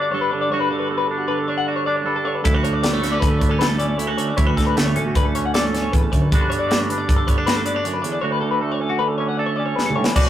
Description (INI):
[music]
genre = math rock and midwest emo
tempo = 156 BPM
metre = 5/4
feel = straight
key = D major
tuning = A4 = 439 Hz
[part]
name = twangy electric guitar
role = accompaniment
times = 0.0-10.3 s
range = D2 to A4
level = -22 LUFS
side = right 3 dB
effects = spring reverb
[part]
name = twelve-string electric guitar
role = arpeggios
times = 0.0-10.3 s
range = F#4 to F#5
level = -23 LUFS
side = left 5 dB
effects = none
[part]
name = hollow-body short-scale picked electric bass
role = bass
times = 2.5-10.3 s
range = G1 to D3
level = -26 LUFS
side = equal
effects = none
[part]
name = crisp fusion drum kit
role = drums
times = 2.5-10.2 s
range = crash cymbal, hi-hat, kick drum, snare drum, toms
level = -20 LUFS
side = equal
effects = none
[sound]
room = moderate studio reverb, RT60 0.6 s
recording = rough rehearsal-room recording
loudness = -17 LUFS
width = side -11 dB against mid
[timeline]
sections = 0.0-10.2 A section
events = drum fill 9.8-10.2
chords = 0.0 Gmaj7; 2.4 Dmaj7; 6.3 Gmaj7; 8.2 Dmaj7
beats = 0.13 | 0.52 0.90 1.29 1.68 2.06 | 2.45 2.83 3.22 3.60 3.99 | 4.38 4.76 5.15 5.53 5.92 | 6.31 6.69 7.08 7.46 7.85 | 8.23 8.62 9.00 9.39 9.77 | 10.15